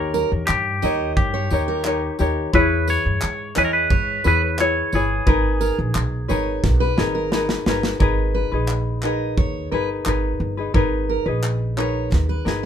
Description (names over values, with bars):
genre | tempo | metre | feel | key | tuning
acoustic pop | 88 BPM | 4/4 | straight | G# harmonic minor | A4 = 440 Hz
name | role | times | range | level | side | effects
twangy electric guitar | melody | 0.0-6.3 s | G4 to C#5 | -23 LUFS | right 1 dB | none
tenor ukulele | accompaniment | 0.0-12.7 s | D#4 to C#5 | -24 LUFS | left 4 dB | none
upright bass | bass | 0.0-12.7 s | G1 to G#2 | -23 LUFS | equal | none
picked steel-string acoustic guitar | arpeggios | 0.1-12.7 s | A#4 to D#5 | -26 LUFS | right 4 dB | none
modern studio drum kit | drums | 0.1-12.6 s | handclaps, kick drum, snare drum, tambourine | -23 LUFS | right 1 dB | none
room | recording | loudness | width
light reverb | minimal, uncompressed stereo recording | -18 LUFS | side -9 dB against mid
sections
0.0-8.0 A section; 8.0-12.7 B section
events
drum fill 6.6-8.0, 12.1-12.7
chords
0.0 D#7; 2.5 C#m7/E; 5.3 G#madd9